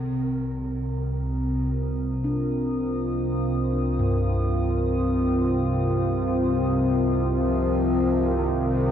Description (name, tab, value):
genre	dark ambient drone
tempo	free time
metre	none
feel	none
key	C minor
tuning	A4 = 435 Hz
part	deep dark ambient pad	sustained chords	0.2-8.9 s	C4 to Eb6	-26 LUFS	equal	chorus, built-in reverb
part	gamelan-type bossed gongs	arpeggios	0.0-8.9 s	G2 to D4	-30 LUFS	left 1 dB	ping-pong delay
part	analog drone	drone	0.0-8.9 s	C2 to C3	-25 LUFS	equal	chorus
part	quartz singing bowl	texture	0.0-8.9 s	C4	-35 LUFS	right 4 dB	none
part	mellow bass clarinet	melody	7.5-8.9 s	Eb3 to F3	-35 LUFS	equal	ping-pong delay
room	moderate huge ambient reverb, RT60 8.4 s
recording	worn, warbling old tape, cassette tape, warbly pitch drift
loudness	-22 LUFS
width	side -9 dB against mid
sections	0.0-8.9 A section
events	none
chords	0.0 Cmadd9